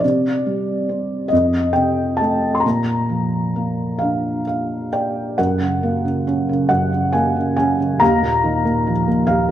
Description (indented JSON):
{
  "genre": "classical, lyrical solo piano",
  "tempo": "45 BPM (dotted quarters)",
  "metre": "6/8",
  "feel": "uneven beats, rubato",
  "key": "unclear",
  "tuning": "A4 = 440 Hz",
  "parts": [
    { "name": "felt-muted upright piano", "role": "solo", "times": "0.0-9.5 s", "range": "Eb2 to C6", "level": "-16 LUFS", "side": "equal", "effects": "none" }
  ],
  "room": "moderate recital hall reverb, RT60 1.7 s",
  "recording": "dark, warm production",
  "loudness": "-16 LUFS",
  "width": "side -11 dB against mid",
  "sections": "0.0-5.4 A section; 5.4-9.5 B section",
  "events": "felt piano fill 4.0-5.4",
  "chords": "0.0 C5; 1.3 F; 2.6 Bb; 5.4 Gb; 8.0 Ebsus2"
}